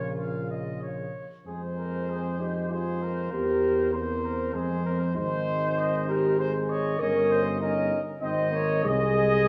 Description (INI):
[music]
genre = classical, brass quintet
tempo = 98 BPM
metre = 3/4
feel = rubato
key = F minor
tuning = A4 = 438 Hz
[part]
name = mellow trumpet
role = melody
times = 0.0-9.5 s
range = C5 to F5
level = -36 LUFS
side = equal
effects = none
[part]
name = warm flugelhorn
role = second line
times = 0.0-9.5 s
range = F4 to Eb5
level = -37 LUFS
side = equal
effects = none
[part]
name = clear trombone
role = accompaniment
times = 0.0-9.5 s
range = Db3 to Db4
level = -38 LUFS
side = equal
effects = none
[part]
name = mellow French horn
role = accompaniment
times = 0.0-9.5 s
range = Bb3 to Bb4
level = -30 LUFS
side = equal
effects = none
[part]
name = mellow tuba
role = bass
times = 0.0-9.5 s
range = G1 to F2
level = -33 LUFS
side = equal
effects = none
[sound]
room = wet recital hall reverb, RT60 1.5 s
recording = small room ambience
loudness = -27 LUFS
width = mono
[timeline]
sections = 0.0-1.5 A section; 1.5-9.5 B section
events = none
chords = 0.0 Bbm; 1.5 Fm; 3.3 C7/E; 4.5 Fm; 5.2 Ab; 7.0 Eb7/G; 8.2 Ab; 8.8 Ab/C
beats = 0.18 0.82 | 1.46 2.08 2.71 | 3.32 3.94 4.54 | 5.16 5.78 6.39 | 7.00 7.61 8.22 | 8.85 9.46